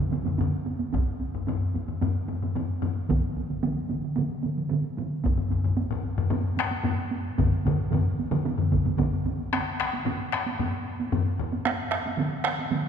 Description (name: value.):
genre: japanese traditional, taiko drum ensemble.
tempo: 112 BPM.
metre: 4/4.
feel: straight.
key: none.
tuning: none.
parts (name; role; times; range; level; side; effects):
taiko ensemble; percussion; 0.1-12.8 s; none; -32 LUFS; right 4 dB; none.
taiko ensemble; percussion; 0.1-11.5 s; none; -28 LUFS; left 4 dB; none.
taiko ensemble; percussion; 0.1-12.8 s; none; -28 LUFS; right 3 dB; none.
taiko ensemble; percussion; 0.9-9.1 s; none; -32 LUFS; equal; none.
room: wet church reverb, RT60 2.7 s.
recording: recorded in a church or concert hall.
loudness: -25 LUFS.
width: side -8 dB against mid.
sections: 0.9-9.5 A section; 9.5-12.9 B section.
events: none.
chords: none.